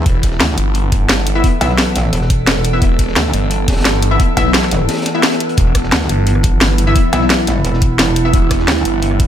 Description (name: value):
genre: dark technical drum and bass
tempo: 174 BPM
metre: 4/4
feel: straight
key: E minor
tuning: A4 = 440 Hz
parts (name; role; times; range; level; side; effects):
- metallic inharmonic drone; sustained chords; 0.0-9.3 s; E3 to A4; -20 LUFS; right 2 dB; chorus, built-in reverb, sidechain pumping
- metallic wobble bass; bass; 0.0-8.8 s; E1 to D2; -16 LUFS; equal; distortion, chorus
- phased detuned saw bass; bass; 0.1-9.3 s; E1 to G1; -16 LUFS; equal; phaser, overdrive, sidechain pumping
- crunchy breakbeat drum kit; drums; 0.1-9.3 s; hi-hat, snare drum; -27 LUFS; equal; none
- drum and bass drum kit; drums; 0.1-9.3 s; hi-hat, rim click, snare drum; -16 LUFS; equal; overdrive
- electronic kick drum; drums; 0.1-9.3 s; none; -14 LUFS; equal; none
- orchestra-hit-like synth stab; stabs; 1.4-8.3 s; B3 to E5; -21 LUFS; left 4 dB; built-in reverb, vintage 12-bit sampler grit, ping-pong delay
room: digital ambience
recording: none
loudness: -11 LUFS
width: side -10 dB against mid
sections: 0.0-9.3 A section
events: break 4.9-5.6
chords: 0.0 E5